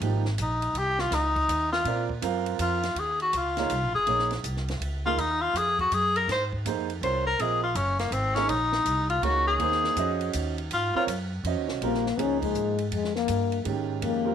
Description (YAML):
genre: modal jazz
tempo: 163 BPM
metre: 3/4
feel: swing 65% on 8ths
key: Eb dorian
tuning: A4 = 441 Hz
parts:
  - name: warm concert grand piano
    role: accompaniment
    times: 0.0-14.3 s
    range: Eb3 to F5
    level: -31 LUFS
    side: right 12 dB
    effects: none
  - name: upright bass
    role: bass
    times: 0.0-14.3 s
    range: Gb1 to Bb2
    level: -31 LUFS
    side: equal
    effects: none
  - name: compact cocktail drum kit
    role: drums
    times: 0.0-14.1 s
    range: hi-hat, kick drum, ride cymbal, snare drum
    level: -37 LUFS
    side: right 2 dB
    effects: none
  - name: clear tenor saxophone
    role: melody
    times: 0.4-11.0 s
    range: Bb3 to C5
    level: -25 LUFS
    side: left 2 dB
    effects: slapback echo
  - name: breathy trombone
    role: second line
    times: 11.8-14.3 s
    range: Ab3 to Db4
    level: -27 LUFS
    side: left 10 dB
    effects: none
room: light reverb, studio ambience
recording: 1960s-style stereo with parts hard left and right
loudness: -24 LUFS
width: side -8 dB against mid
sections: 0.0-3.0 A section; 3.0-11.8 A section; 11.8-14.3 A section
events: tenor saxophone solo 0.0-11.8; trombone solo 11.8-14.3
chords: 0.0 Cm; 1.9 Bb; 3.0 Eb7sus2; 5.2 Fm7/Eb; 7.4 Ebm7; 9.6 Fm7/Eb; 11.8 Bbm7